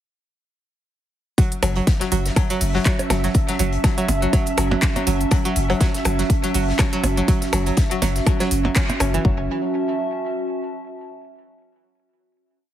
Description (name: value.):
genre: minimal techno.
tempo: 122 BPM.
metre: 4/4.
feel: swing 56% on 16ths.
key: F# minor.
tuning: A4 = 440 Hz.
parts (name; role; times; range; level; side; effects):
string-like resonator pluck; riff; 1.4-9.5 s; E3 to C#4; -25 LUFS; equal; chorus, sidechain pumping, tape echo.
electronic kick drum; drums; 1.4-9.4 s; none; -18 LUFS; equal; small room ambience.
house drum kit; drums; 1.4-9.2 s; handclaps, hi-hat; -27 LUFS; equal; small room ambience.
loose indie drum kit; drums; 1.4-9.1 s; hi-hat, snare drum; -35 LUFS; left 2 dB; sidechain pumping on hats, high-pass filter on hats, small room ambience, high-pass filter on snare, high-pass filter on room.
pulsing gated texture; texture; 2.0-9.3 s; E5; -33 LUFS; equal; chorus, built-in reverb, sidechain pumping.
warbly tape-like pad; texture; 1.4-11.2 s; C#4 to A5; -26 LUFS; right 3 dB; chorus, built-in reverb, sidechain pumping.
punchy sub bass; bass; 1.6-9.5 s; F#1; -22 LUFS; left 1 dB; sidechain pumping.
percussion blips; percussion; 1.6-9.1 s; none; -26 LUFS; right 3 dB; small room ambience, tape echo.
room: moderate digital room reverb, RT60 1.3 s.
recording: heavily compressed radio sound, multiband compression.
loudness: -18 LUFS.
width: side -12 dB against mid.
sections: 1.4-9.2 drop; 9.2-11.2 final chord.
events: drop 1.4-9.2; band accent 8.8.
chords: 1.4 F#m7.